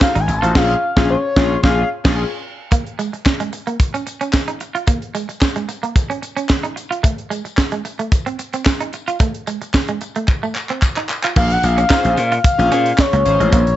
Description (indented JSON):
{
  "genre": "early-eighties boogie funk",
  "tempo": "111 BPM",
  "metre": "4/4",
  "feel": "straight",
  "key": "Bb minor",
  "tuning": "A4 = 440 Hz",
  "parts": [
    { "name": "expressive synth lead", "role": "melody", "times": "0.0-1.9, 11.4-13.8 s", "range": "Db5 to A5", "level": "-18 LUFS", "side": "left 2 dB", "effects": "chorus" },
    { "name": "chorused polysynth", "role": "accompaniment", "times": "0.0-2.2, 11.9-13.6 s", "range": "Db4 to C5", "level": "-22 LUFS", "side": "left 4 dB", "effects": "none" },
    { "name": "tight funk drum kit", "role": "drums", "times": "0.0-13.8 s", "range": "crash cymbal, handclaps, hi-hat, kick drum, snare drum", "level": "-17 LUFS", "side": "equal", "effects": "none" },
    { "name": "tambourine", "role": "percussion", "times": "0.0-13.7 s", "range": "none", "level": "-37 LUFS", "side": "left 12 dB", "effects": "none" },
    { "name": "semi-hollow electric guitar", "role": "riff", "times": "0.2-13.6 s", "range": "Ab3 to F4", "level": "-23 LUFS", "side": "right 5 dB", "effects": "lush chorus" },
    { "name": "gritty slap bass", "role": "bass", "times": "0.2-2.2, 11.4-13.7 s", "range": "Ab1 to Bb2", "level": "-17 LUFS", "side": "equal", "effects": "overdrive" }
  ],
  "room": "light reverb, small room ambience",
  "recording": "nothing above 7.9 kHz",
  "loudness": "-15 LUFS",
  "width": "side -13 dB against mid",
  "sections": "0.0-2.7 A section; 2.7-11.4 B section; 11.4-13.8 C section",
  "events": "analog synth lead solo 0.0-2.7; band accent 0.6-2.7; drum fill 10.3-11.4",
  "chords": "0.0 F7b9; 0.6 Bbm7; 6.8 F7; 11.4 Bbm9"
}